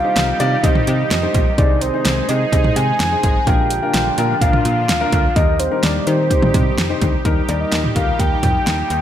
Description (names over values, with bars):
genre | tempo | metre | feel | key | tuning
synth-pop | 127 BPM | 4/4 | straight | C minor | A4 = 440 Hz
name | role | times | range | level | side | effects
soft octave-layered synth lead | melody | 0.0-9.0 s | C5 to Ab5 | -20 LUFS | right 1 dB | chorus, digital delay
dark grand piano | accompaniment | 0.0-8.6 s | D4 to D5 | -23 LUFS | left 5 dB | none
sweeping resonant pad | sustained chords | 0.0-9.0 s | Bb2 to Ab4 | -24 LUFS | equal | chorus
slap-like FM bass | bass | 0.0-9.0 s | Ab1 to Eb3 | -21 LUFS | equal | none
pop drum kit | drums | 0.2-9.0 s | hi-hat, kick drum, snare drum, toms | -18 LUFS | right 1 dB | gated reverb
room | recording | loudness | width
moderate lush hall reverb, RT60 1.9 s | bright 1980s-style digital production | -14 LUFS | side -10 dB against mid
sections
0.0-7.3 A section; 7.3-9.0 B section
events
none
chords
0.0 Cm; 1.6 Ab/C; 3.5 Bb; 5.4 Eb; 6.3 Cm; 7.3 Eb